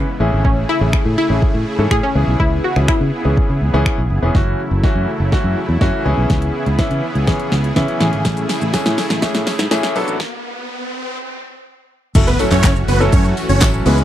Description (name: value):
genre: dance-pop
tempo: 123 BPM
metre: 4/4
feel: straight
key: F# minor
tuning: A4 = 440 Hz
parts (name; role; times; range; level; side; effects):
- analog pluck; melody; 0.0-3.8 s; C#4 to G#4; -20 LUFS; left 2 dB; chorus, tape echo
- clear baby grand piano; accompaniment; 0.0-14.0 s; E3 to A4; -21 LUFS; left 1 dB; none
- supersaw pad; sustained chords; 0.0-14.0 s; C#3 to G#4; -25 LUFS; equal; sidechain pumping
- fingered electric bass; bass; 0.0-14.0 s; E1 to C#3; -17 LUFS; equal; sidechain pumping
- deep house drum kit; drums; 0.4-14.0 s; crash cymbal, finger snaps, handclaps, hi-hat, kick drum, shaker, snare drum; -17 LUFS; equal; none
- riser and impact; sound effects; 7.5-14.0 s; none; -29 LUFS; equal; none
- tambourine; percussion; 8.2-14.0 s; none; -35 LUFS; left 20 dB; none
- supersaw chords; melody; 12.3-14.0 s; B3 to C#5; -19 LUFS; right 2 dB; sidechain pumping, tape echo
room: little or no reverb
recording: dry, close 1970s-style studio recording, high-pass filter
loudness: -14 LUFS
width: side -12 dB against mid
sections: 0.0-4.3 A section; 4.3-12.2 B section; 12.2-14.0 C section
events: build-up 4.3-12.2; drum fill 4.3-10.2; filter sweep 4.3-12.2; stop 10.2-12.2; drop 12.2-14.0; impact 12.2-14.0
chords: 0.2 Amaj7; 2.2 C#m7; 4.3 F#m7; 6.1 C#m7; 8.0 Amaj7; 10.0 Bm7; 12.2 F#m7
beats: | 0.45 0.93 1.42 1.91 | 2.40 2.88 3.37 3.86 | 4.35 4.83 5.32 5.81 | 6.30 6.79 7.27 7.76 | 8.25 8.74 9.22 9.71 | 10.20 10.69 11.18 11.66 | 12.15 12.64 13.13 13.62